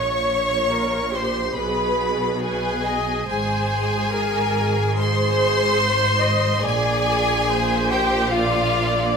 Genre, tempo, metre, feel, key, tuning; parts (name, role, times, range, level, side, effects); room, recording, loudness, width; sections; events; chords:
classical, slow romantic movement for string orchestra; 70 BPM; 4/4; rubato; A4 = 440 Hz
clear chamber violin section; melody; 0.0-9.2 s; F5 to Db6; -24 LUFS; left 3 dB
rich studio violin section; second line; 0.0-9.2 s; F4 to Db5; -23 LUFS; left 2 dB
rich chamber viola section; accompaniment; 0.0-9.2 s; G4 to Eb5; -25 LUFS; right 2 dB
clear chamber double bass section; bass; 0.0-9.2 s; Ab1 to Cb2; -27 LUFS; right 2 dB
rich studio cello section; bass; 0.0-9.2 s; Ab2 to Cb3; -28 LUFS; right 2 dB
wet recital hall reverb, RT60 1.4 s; -18 LUFS; side -6 dB against mid
0.0-9.2 A section
0.0 Bbm69; 1.6 Abm/Cb; 3.3 Abadd9; 6.6 Bb9